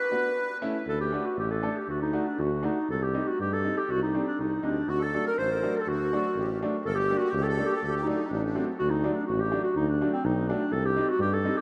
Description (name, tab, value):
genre	klezmer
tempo	122 BPM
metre	2/4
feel	straight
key	D phrygian dominant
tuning	A4 = 440 Hz
part	warm clarinet	melody	0.0-11.6 s	C4 to C5	-30 LUFS	equal	none
part	accordion	second line	0.0-0.6, 4.9-8.7 s	D4 to C5	-41 LUFS	equal	light tremolo tuning, tape echo
part	clear upright piano	accompaniment	0.1-11.6 s	F#3 to A4	-35 LUFS	equal	none
part	mellow tuba	bass	0.9-11.5 s	G1 to G2	-33 LUFS	equal	none
room	wet cathedral reverb, RT60 6.0 s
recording	in a vast, echoing space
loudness	-28 LUFS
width	mono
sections	0.9-8.8 A section; 8.8-11.6 A section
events	speeding up 0.0-11.6; break 0.0-0.9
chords	0.4 A; 0.9 D; 2.9 Cm; 4.9 D; 6.8 Gm; 7.8 D; 10.7 Cm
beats	0.37 | 0.87 1.38 | 1.88 2.38 | 2.88 3.38 | 3.88 4.38 | 4.88 5.37 | 5.87 6.36 | 6.85 7.34 | 7.82 8.31 | 8.79 9.28 | 9.76 10.24 | 10.72 11.20